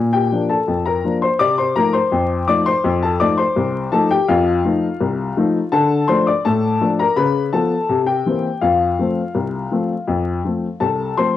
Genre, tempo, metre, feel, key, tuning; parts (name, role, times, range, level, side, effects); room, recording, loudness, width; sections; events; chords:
ragtime piano; 83 BPM; 2/4; straight; F major from 5.7 s; A4 = 440 Hz
clear upright piano; solo; 0.0-11.4 s; C2 to D6; -16 LUFS; left 3 dB; cassette tape
moderate studio reverb, RT60 0.7 s; home recording on cassette, vinyl crackle; -16 LUFS; side -12 dB against mid
0.0-11.4 A section
0.0 Bb; 1.4 F7/C; 2.8 F7; 5.7 Dm; 7.2 Db7; 7.9 C7; 8.6 F